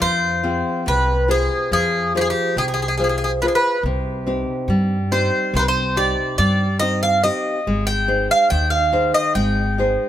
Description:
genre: greek folk, Greek bouzouki band.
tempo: 141 BPM (eighths).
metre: 9/8.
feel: straight.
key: unclear.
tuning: A4 = 435 Hz.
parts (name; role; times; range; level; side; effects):
Greek bouzouki; melody; 0.0-10.1 s; G4 to G5; -19 LUFS; equal; none.
nylon-string guitar; accompaniment; 0.0-10.1 s; C3 to C5; -22 LUFS; left 1 dB; none.
upright bass; bass; 0.0-9.9 s; Ab1 to G2; -23 LUFS; equal; none.
room: light reverb.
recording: none.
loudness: -17 LUFS.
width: side -11 dB against mid.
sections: 0.0-10.1 A section.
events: none.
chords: 0.0 Fm; 3.8 Cm; 7.7 Ab.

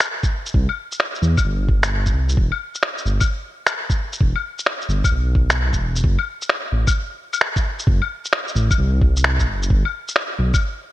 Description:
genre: future garage.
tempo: 131 BPM.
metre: 4/4.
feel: swing 65% on 16ths.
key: unclear.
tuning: A4 = 442 Hz.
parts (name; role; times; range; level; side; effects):
electronic finger snaps, shaker and claves; drums; 0.0-10.6 s; none; -22 LUFS; left 2 dB; studio reverb.
electronic kick drum; drums; 0.2-10.6 s; none; -19 LUFS; equal; studio reverb.
dark detuned saw bass; bass; 0.5-10.5 s; E1 to E2; -19 LUFS; equal; none.
room: light reverb, digital ambience.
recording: bright 1980s-style digital production.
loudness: -17 LUFS.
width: side -15 dB against mid.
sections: 0.0-6.0 A section; 6.0-10.9 B section.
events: none.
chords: none.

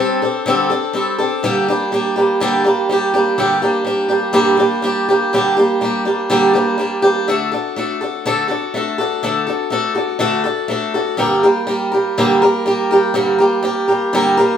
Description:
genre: rock.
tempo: 123 BPM.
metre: 4/4.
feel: straight.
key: G minor, G harmonic minor from 3.4 s.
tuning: A4 = 440 Hz.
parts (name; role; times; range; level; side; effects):
picked swing-style acoustic guitar; solo; 0.0-14.6 s; G2 to Bb4; -14 LUFS; equal; none.
room: moderate studio reverb, RT60 0.5 s.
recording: band playing live in one room.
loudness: -14 LUFS.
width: side -8 dB against mid.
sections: 0.0-3.4 A section; 3.4-14.6 B section.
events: none.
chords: 0.0 D7sus4; 1.4 Gm; 7.3 D; 11.2 Gm.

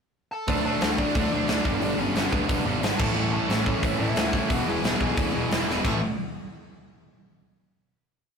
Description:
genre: punk rock.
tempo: 179 BPM.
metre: 4/4.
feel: straight.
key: A mixolydian.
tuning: A4 = 440 Hz.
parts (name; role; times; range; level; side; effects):
dark smooth lead guitar; melody; 0.3-6.0 s; B3 to C#6; -32 LUFS; left 2 dB; overdrive.
distorted electric guitar; riff; 0.5-6.0 s; E2 to D4; -30 LUFS; right 6 dB; overdrive.
overdriven electric guitar; riff; 0.5-6.0 s; E2 to D4; -32 LUFS; left 6 dB; none.
thick fuzz guitar; riff; 0.5-6.0 s; G2 to A4; -31 LUFS; equal; distortion.
fuzz picked electric bass; bass; 0.5-6.0 s; E1 to D2; -30 LUFS; equal; overdrive.
big rock drum kit; drums; 0.5-5.9 s; crash cymbal, hi-hat, kick drum, snare drum; -26 LUFS; equal; none.
room: light reverb.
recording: rough rehearsal-room recording, warm saturation.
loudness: -22 LUFS.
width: side -6 dB against mid.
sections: 0.0-0.5 pickup bar; 0.5-5.8 riff; 5.8-7.2 final chord.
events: drum fill 5.7.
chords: 0.5 D; 1.6 G; 3.0 A; 4.5 E; 5.8 A5.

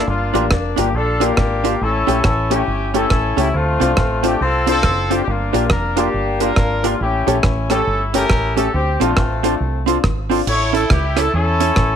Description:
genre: ska.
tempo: 138 BPM.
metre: 4/4.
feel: swing 62% on 8ths.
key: D minor.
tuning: A4 = 439 Hz.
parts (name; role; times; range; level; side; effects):
warm horn section; melody; 0.0-12.0 s; A3 to C#5; -19 LUFS; left 2 dB; none.
deep dub fingered electric bass; bass; 0.1-12.0 s; F1 to E2; -21 LUFS; right 1 dB; none.
archtop guitar, miked and amplified; accompaniment; 0.3-11.7 s; C4 to Bb4; -22 LUFS; right 14 dB; none.
warm upright piano; stabs; 0.3-10.4 s; A3 to G4; -23 LUFS; left 12 dB; none.
deep reggae drum kit; drums; 0.4-11.9 s; crash cymbal, hi-hat, kick drum, rim click; -19 LUFS; right 1 dB; none.
room: light reverb, studio ambience.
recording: 1960s-style stereo with parts hard left and right.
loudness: -15 LUFS.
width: side -8 dB against mid.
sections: 0.0-10.5 A section; 10.5-12.0 B section.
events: none.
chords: 0.1 Gm7; 1.8 A7; 3.5 Dm7; 5.3 Gm7; 7.0 A7; 8.7 Dm7; 10.5 A.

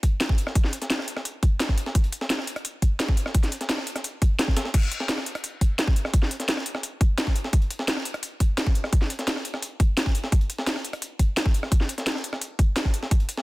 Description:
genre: drum and bass.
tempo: 172 BPM.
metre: 4/4.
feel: straight.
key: none.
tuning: none.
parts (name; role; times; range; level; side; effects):
breakbeat sampler-style drum kit; drums; 0.0-13.4 s; hi-hat, snare drum; -33 LUFS; equal; high-pass filter on snare, high-pass filter on hats.
drum and bass drum kit; drums; 0.0-13.4 s; crash cymbal, hi-hat, rim click, snare drum; -27 LUFS; equal; none.
electronic kick drum; drums; 0.0-13.2 s; none; -21 LUFS; equal; none.
room: digital ambience.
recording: dense, heavily limited modern master.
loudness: -22 LUFS.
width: side -20 dB against mid.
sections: 0.0-13.4 A section.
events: none.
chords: none.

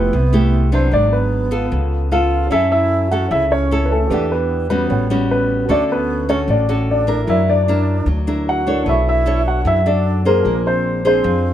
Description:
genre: bossa nova.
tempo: 151 BPM.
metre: 4/4.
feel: straight.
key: unclear.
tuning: A4 = 441 Hz.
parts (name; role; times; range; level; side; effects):
dark concert grand piano; melody; 0.0-11.5 s; A4 to F#5; -19 LUFS; left 1 dB; none.
breathy bright wooden-headed alto flute; second line; 0.0-11.5 s; A3 to F#4; -25 LUFS; right 4 dB; none.
nylon-string guitar; accompaniment; 0.0-11.5 s; G#2 to C#5; -20 LUFS; left 1 dB; none.
upright bass; bass; 0.0-11.5 s; G#1 to F#2; -19 LUFS; equal; none.
dark baby grand piano; accompaniment; 2.5-11.5 s; D4 to C#6; -28 LUFS; right 3 dB; none.
room: little or no reverb.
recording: close, detailed microphones.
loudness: -14 LUFS.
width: side -11 dB against mid.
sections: 0.0-11.5 A section.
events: none.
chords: 0.0 Fmaj9; 0.9 G#m7b5; 1.7 C#7b13; 2.5 F#m7; 4.1 Em7; 4.9 A13; 5.7 Dmaj7; 7.3 F#7alt; 8.9 Bm9; 10.5 Bb9.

